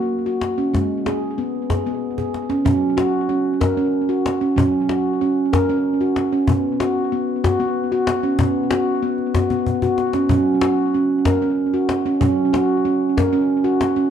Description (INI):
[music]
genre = world meditative, meditative tuned percussion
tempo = 63 BPM (dotted quarters)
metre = 6/8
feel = straight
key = unclear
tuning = A4 = 440 Hz
[part]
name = handpan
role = arpeggios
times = 0.0-14.1 s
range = F#3 to A#4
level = -18 LUFS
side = right 1 dB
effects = tape echo
[part]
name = cajon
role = percussion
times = 0.4-14.0 s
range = none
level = -22 LUFS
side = left 2 dB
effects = none
[sound]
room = wet echo chamber reverb, RT60 1.4 s, small room reverb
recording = dark, warm production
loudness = -17 LUFS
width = side -8 dB against mid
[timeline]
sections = 0.0-2.7 A section; 2.7-14.1 B section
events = drum fill 2.2-2.7, 9.5-10.3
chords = 0.0 F#; 0.7 G#m; 2.7 F#5; 6.5 B5; 10.3 F#5